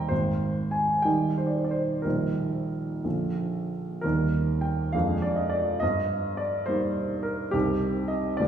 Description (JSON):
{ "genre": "classical, romantic character piece for solo piano", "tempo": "58-71 BPM (dotted quarters)", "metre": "6/8", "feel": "rubato", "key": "Eb major", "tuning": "A4 = 441 Hz", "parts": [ { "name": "warm baby grand piano", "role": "solo", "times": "0.0-8.5 s", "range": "Ab1 to C6", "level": "-24 LUFS", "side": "right 1 dB", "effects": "none" } ], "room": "wet recital hall reverb, RT60 1.8 s", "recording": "heard from further back in the room, studio reverb", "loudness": "-24 LUFS", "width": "side -9 dB against mid", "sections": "0.0-4.0 A section; 4.0-8.5 A section", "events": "none", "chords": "0.1 Abmaj7; 2.0 Eb/Bb; 3.0 Bb; 4.0 Eb; 4.9 Bb7/F; 5.8 Eb/G; 7.5 Cm", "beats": "| 0.10 1.04 | 2.04 3.04 | 4.03 4.94 | 5.82 6.68 | 7.54 8.39" }